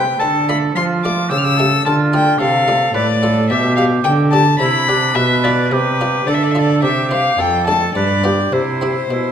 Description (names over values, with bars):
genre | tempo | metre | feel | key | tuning
classical, baroque-style sonata movement with continuo | 108 BPM | 3/4 | straight | unclear | A4 = 440 Hz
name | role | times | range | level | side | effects
rich violin | melody | 0.0-9.3 s | B4 to F6 | -17 LUFS | left 4 dB | none
clear oboe | second line | 0.0-9.3 s | D4 to B4 | -20 LUFS | right 6 dB | none
buff-stop harpsichord | accompaniment | 0.0-9.3 s | F2 to E5 | -23 LUFS | left 1 dB | none
rich cello | bass | 0.0-9.3 s | F2 to F3 | -17 LUFS | right 1 dB | none
room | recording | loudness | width
wet recital hall reverb, RT60 1.5 s | none | -13 LUFS | side -8 dB against mid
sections
0.0-9.3 A section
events
none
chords
0.2 Dm; 1.3 A7/C#; 1.9 Dm; 3.5 G/B; 5.2 G7/B; 6.8 C; 7.4 Dm/F; 8.0 G7; 8.5 C